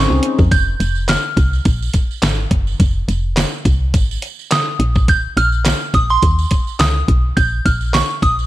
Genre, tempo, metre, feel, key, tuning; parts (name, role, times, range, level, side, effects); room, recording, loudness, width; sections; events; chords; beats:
early-eighties boogie funk; 105 BPM; 4/4; swing 56% on 16ths; F minor; A4 = 440 Hz
delicate synth tine bell; melody; 0.0-8.4 s; C6 to G6; -19 LUFS; right 2 dB; chorus
warm analog pad; sustained chords; 0.0-0.5 s; Db3 to Eb4; -34 LUFS; equal
woody FM bass; bass; 0.0-8.5 s; F1 to F2; -17 LUFS; equal
detuned 8-bit digital drum machine; drums; 0.2-8.4 s; handclaps, hi-hat, kick drum, snare drum; -16 LUFS; equal
tambourine; percussion; 0.4-8.5 s; -30 LUFS; right 13 dB
little or no reverb; -13 LUFS; side -15 dB against mid
0.5-8.5 A section
0.0 Bbm11; 0.5 Fm; 4.8 Bb5
| 0.51 1.08 1.65 2.23 | 2.80 3.37 3.94 4.51 | 5.08 5.65 6.22 6.80 | 7.37 7.94